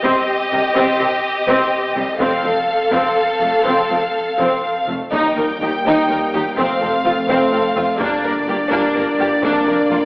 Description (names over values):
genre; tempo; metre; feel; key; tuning
cinematic, epic orchestral film score; 84 BPM (dotted quarters); 6/8; straight; unclear; A4 = 440 Hz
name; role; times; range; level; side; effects
warm symphonic violin section; melody; 0.0-10.1 s; D5 to G5; -20 LUFS; equal; none
warm symphonic violin section; second line; 0.0-10.0 s; C4 to Bb4; -20 LUFS; equal; none
warm symphonic viola section; accompaniment; 0.0-10.0 s; G3 to Eb4; -20 LUFS; equal; none
clear symphonic double bass section; bass; 0.0-10.0 s; F1 to Eb2; -30 LUFS; equal; none
rich symphonic cello section; bass; 0.0-10.0 s; Eb2 to C3; -26 LUFS; equal; none
mellow French horn section; sustained chords; 5.1-10.1 s; G3 to D4; -21 LUFS; equal; none
solo taiko drums; drums; 5.1-9.9 s; none; -36 LUFS; equal; none
room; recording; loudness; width
wet scoring stage reverb, RT60 1.9 s; heard from further back in the room, AM radio sound; -14 LUFS; side -28 dB against mid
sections
0.0-5.1 A section; 5.1-10.1 B section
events
none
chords
0.0 Cm; 2.2 F; 5.1 Eb; 6.6 F; 8.0 Gm; 9.4 Bb